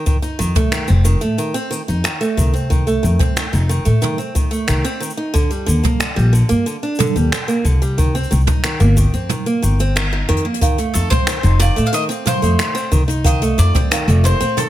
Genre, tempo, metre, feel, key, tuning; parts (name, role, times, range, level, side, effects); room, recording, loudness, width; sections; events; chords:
folktronica; 91 BPM; 4/4; straight; F mixolydian; A4 = 441 Hz
picked acoustic archtop guitar; arpeggios; 0.0-14.7 s; D3 to Eb4; -21 LUFS; right 2 dB; digital delay
jazz brush drum kit; drums; 0.1-14.7 s; finger snaps, hi-hat, shaker, toms; -22 LUFS; right 1 dB
kick drum; drums; 0.1-13.9 s; -18 LUFS; equal
upright bass; bass; 0.4-14.5 s; F1 to A2; -15 LUFS; equal
small celesta; second line; 10.6-14.7 s; F5; -28 LUFS; right 8 dB; digital delay
bowl-back mandolin; melody; 10.9-14.7 s; A4 to F5; -22 LUFS; left 2 dB; digital delay
studio ambience; -14 LUFS; side -14 dB against mid
0.0-10.6 A section; 10.6-14.7 B section
break 9.3-10.6; band accent 10.0-10.3; drum fill 10.3-10.6
0.1 F7; 5.3 Ebmaj7 (rootless); 8.0 Cm7; 10.6 F7